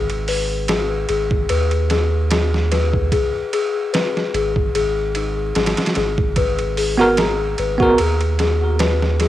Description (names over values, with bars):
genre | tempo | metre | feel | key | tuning
trip hop | 74 BPM | 4/4 | swing 55% on 16ths | G# minor | A4 = 440 Hz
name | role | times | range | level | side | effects
music box | arpeggios | 0.0-9.3 s | D#4 to B4 | -21 LUFS | left 6 dB | vintage 12-bit sampler grit, cassette tape, tape echo
soft dub sub bass | bass | 0.0-9.3 s | G#1 to D#2 | -21 LUFS | right 2 dB | none
trip hop sampler-style drum kit | drums | 0.1-9.3 s | hi-hat, kick drum, ride cymbal, snare drum | -22 LUFS | right 2 dB | overdrive
bell-like tine electric piano | accompaniment | 7.0-8.0 s | B3 to A#4 | -17 LUFS | right 2 dB | fast stereo tremolo, cassette tape, tape echo
room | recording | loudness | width
light reverb, digital ambience | home recording on cassette | -16 LUFS | side -13 dB against mid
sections
0.0-9.3 A section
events
none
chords
0.0 G#m